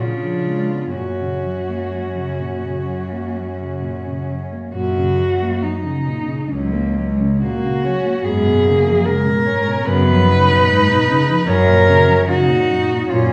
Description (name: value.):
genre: classical, lyrical piece for cello ensemble.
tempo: 60-76 BPM.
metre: 4/4.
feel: rubato.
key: F# major.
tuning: A4 = 440 Hz.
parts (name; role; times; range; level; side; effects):
dark cello; melody; 0.0-13.3 s; C#4 to B4; -21 LUFS; equal; none.
warm cello; second line; 0.0-13.3 s; F#3 to D#4; -26 LUFS; equal; none.
dark cello; accompaniment; 0.0-13.3 s; F#2 to B3; -25 LUFS; equal; none.
rich cello; bass; 0.0-13.3 s; C#2 to C#3; -24 LUFS; equal; none.
room: wet recital hall reverb, RT60 1.4 s.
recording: heard from further back in the room, nothing above 10.5 kHz.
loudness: -17 LUFS.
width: mono.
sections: 0.0-4.7 A section; 4.7-13.3 A section.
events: none.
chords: 0.0 C#7b9; 1.0 F#; 8.3 C#7/F#; 11.5 F#.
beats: 0.00 | 0.97 1.93 2.87 3.82 | 4.75 5.64 6.50 7.42 | 8.26 9.06 9.87 10.68 | 11.48 12.28 13.10.